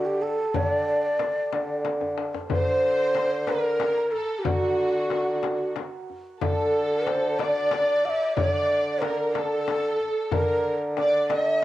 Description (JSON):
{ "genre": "Persian modal ensemble", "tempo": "61 BPM (dotted quarters)", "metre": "6/8", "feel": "straight", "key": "D dastgah homayun", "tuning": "A4 = 440 Hz", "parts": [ { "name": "breathy mellow ney", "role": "melody", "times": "0.0-11.6 s", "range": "F#4 to F#5-49c", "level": "-24 LUFS", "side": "equal", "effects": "cassette tape" }, { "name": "santur", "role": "second line", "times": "0.0-11.6 s", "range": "F#4 to Eb5+45c", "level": "-36 LUFS", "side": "right 6 dB", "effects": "cassette tape" }, { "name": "warm bassoon", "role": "bass", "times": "0.0-11.6 s", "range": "D3", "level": "-28 LUFS", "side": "equal", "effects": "none" }, { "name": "frame drum", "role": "percussion", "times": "0.5-11.5 s", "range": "none", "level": "-34 LUFS", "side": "left 7 dB", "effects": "none" }, { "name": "tombak", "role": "percussion", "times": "0.5-11.5 s", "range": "none", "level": "-32 LUFS", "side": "left 3 dB", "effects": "none" }, { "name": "rich symphonic violin section", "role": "second line", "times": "2.5-11.6 s", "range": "F#4 to Eb5+45c", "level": "-32 LUFS", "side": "left 1 dB", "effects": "cassette tape" } ], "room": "wet spring reverb, RT60 1.6 s, small room ambience", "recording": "home recording on cassette", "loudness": "-22 LUFS", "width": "side -15 dB against mid", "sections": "0.0-2.5 A section; 2.5-11.6 B section", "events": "drum fill 1.9-2.5", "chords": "none" }